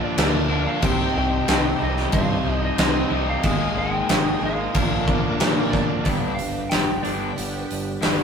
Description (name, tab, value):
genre	classic rock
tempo	92 BPM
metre	4/4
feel	straight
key	C minor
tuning	A4 = 437 Hz
part	lightly driven lead guitar	melody	0.0-7.7 s	D5 to G5	-29 LUFS	equal	none
part	picked plugged-in twelve-string acoustic guitar	accompaniment	0.0-8.2 s	G2 to Bb4	-31 LUFS	right 3 dB	none
part	bright tonewheel organ	sustained chords	0.0-8.2 s	F4 to Eb5	-35 LUFS	right 1 dB	none
part	cranked stack guitar	riff	0.0-8.2 s	G2 to Eb4	-29 LUFS	right 5 dB	overdrive
part	crunchy overdriven guitar	riff	0.0-8.2 s	G2 to Bb4	-29 LUFS	left 6 dB	none
part	growling picked electric bass	bass	0.2-8.2 s	G1 to Bb2	-28 LUFS	equal	overdrive
part	huge arena drum kit	drums	0.2-8.2 s	crash cymbal, hi-hat, kick drum, snare drum	-22 LUFS	left 1 dB	none
room	moderate studio reverb, RT60 0.6 s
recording	rough rehearsal-room recording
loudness	-19 LUFS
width	side -6 dB against mid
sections	0.0-6.1 A section; 6.1-8.2 B section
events	none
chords	0.0 Bb; 0.8 Cm; 3.4 Absus2; 4.8 Bb; 6.1 G